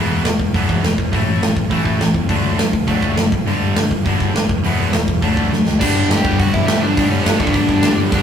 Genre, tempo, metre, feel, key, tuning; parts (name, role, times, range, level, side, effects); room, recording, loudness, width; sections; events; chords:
punk rock; 205 BPM; 4/4; straight; A4 = 440 Hz
crunchy overdriven guitar; riff; 0.0-8.2 s; E2 to D4; -24 LUFS; left 5 dB
distorted electric guitar; riff; 0.0-8.2 s; G2 to G4; -23 LUFS; right 5 dB; distortion
picked electric bass; bass; 0.0-8.2 s; E1 to E2; -21 LUFS; equal
big rock drum kit; drums; 0.2-8.2 s; crash cymbal, hi-hat, kick drum, snare drum; -17 LUFS; left 1 dB
dark smooth lead guitar; melody; 5.8-8.2 s; B3 to G5; -19 LUFS; left 1 dB; overdrive
fuzz guitar; riff; 5.8-8.2 s; G2 to G3; -25 LUFS; right 1 dB
light reverb; rough rehearsal-room recording, tube saturation; -14 LUFS; side -8 dB against mid
0.0-5.8 A section; 5.8-8.2 B section
drum fill 5.5
0.0 E; 1.1 A5; 2.3 D; 3.3 G5; 4.5 E; 5.2 D; 5.8 G